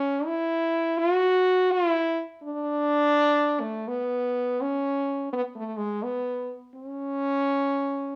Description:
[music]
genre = hawaiian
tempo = free time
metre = none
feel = none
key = unclear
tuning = A4 = 442 Hz
[part]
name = warm French horn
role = solo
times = 0.0-8.2 s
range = G#3 to F#4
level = -26 LUFS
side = equal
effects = none
[sound]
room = moderate studio reverb, RT60 0.7 s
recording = none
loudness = -26 LUFS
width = mono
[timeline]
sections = 0.0-8.2 A section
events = none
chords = none

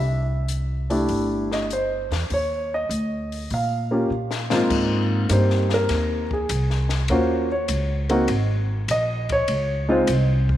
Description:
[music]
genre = jazz piano trio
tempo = 100 BPM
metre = 4/4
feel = swing 69% on 8ths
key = Ab major from 4.7 s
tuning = A4 = 439 Hz
[part]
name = dark concert grand piano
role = melody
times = 0.0-10.6 s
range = Ab2 to F5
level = -22 LUFS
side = equal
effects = none
[part]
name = upright bass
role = bass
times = 0.0-10.6 s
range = G1 to Bb2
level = -24 LUFS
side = equal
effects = none
[part]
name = open jazz drum kit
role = drums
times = 0.5-10.6 s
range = crash cymbal, hi-hat, kick drum, ride cymbal, snare drum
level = -31 LUFS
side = left 4 dB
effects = none
[sound]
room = moderate echo chamber reverb, RT60 2.2 s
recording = 1960s-style stereo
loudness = -20 LUFS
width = side -12 dB against mid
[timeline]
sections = 0.0-4.7 A section; 4.7-10.6 B section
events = drum fill 4.1-4.7; grand piano solo 4.7-10.6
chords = 0.0 C6; 2.3 Eb7(no3); 4.7 Abmaj7; 7.1 Ebm9; 8.3 Absus2; 9.5 Dbmaj7(no3)

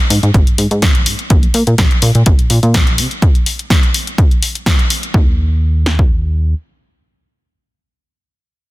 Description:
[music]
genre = filtered disco house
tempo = 125 BPM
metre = 4/4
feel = swing 53% on 16ths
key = unclear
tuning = A4 = 439 Hz
[part]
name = plucky analog bass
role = bass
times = 0.1-6.5 s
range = Ab1 to C3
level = -14 LUFS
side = equal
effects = sidechain pumping, low-pass filter
[part]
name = punchy analog drum machine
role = drums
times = 0.1-5.1 s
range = hi-hat, snare drum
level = -18 LUFS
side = left 1 dB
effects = none
[part]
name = punchy analog drum machine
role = drums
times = 0.3-6.1 s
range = kick drum, snare drum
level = -12 LUFS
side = equal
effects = none
[sound]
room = little or no reverb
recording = dense, heavily limited modern master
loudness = -11 LUFS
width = side -19 dB against mid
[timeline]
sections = 0.0-5.1 A section; 5.1-8.7 B section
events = none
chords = none

